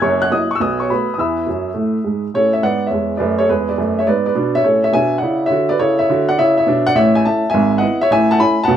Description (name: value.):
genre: jazz, stride piano.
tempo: 208 BPM.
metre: 4/4.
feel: swing 66% on 8ths.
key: A major.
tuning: A4 = 440 Hz.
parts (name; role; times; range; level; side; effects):
warm upright piano; solo; 0.0-8.8 s; F#1 to F#6; -13 LUFS; equal; none.
room: moderate studio reverb, RT60 0.5 s.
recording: none.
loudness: -14 LUFS.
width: side -10 dB against mid.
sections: 0.0-2.3 A section; 2.3-8.8 B section.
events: upright piano fill 1.5-2.3.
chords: 0.0 F#7; 0.6 B7; 1.2 E; 2.3 E7; 4.6 A; 5.8 A/C#; 6.9 A; 7.5 E/G#; 8.1 Amaj7.